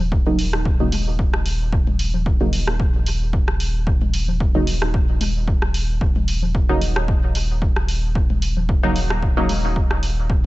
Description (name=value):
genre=dub techno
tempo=112 BPM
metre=4/4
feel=swing 54% on 16ths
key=Eb minor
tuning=A4 = 440 Hz
part: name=warm sub bass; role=bass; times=0.0-10.5 s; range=Eb1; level=-22 LUFS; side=equal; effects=sidechain pumping
part: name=electronic congas and toms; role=percussion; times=0.0-9.6 s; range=none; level=-31 LUFS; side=left 5 dB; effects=sidechain pumping on toms, small room ambience, sidechain pumping on perc, dub echo
part: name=electronic kick drum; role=drums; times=0.1-10.4 s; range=none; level=-20 LUFS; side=equal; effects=small room ambience
part: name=filtered dub chord stab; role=stabs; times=0.3-9.5 s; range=Db3 to Eb4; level=-24 LUFS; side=right 1 dB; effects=chorus, phaser, sidechain pumping, dub echo
part: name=punchy analog drum machine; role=drums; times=0.4-10.1 s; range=hi-hat, rim click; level=-27 LUFS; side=right 1 dB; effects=small room ambience, dub echo
room=digital ambience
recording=nothing above 8.0 kHz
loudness=-17 LUFS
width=side -18 dB against mid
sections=0.0-10.5 A section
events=none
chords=0.0 Ebm7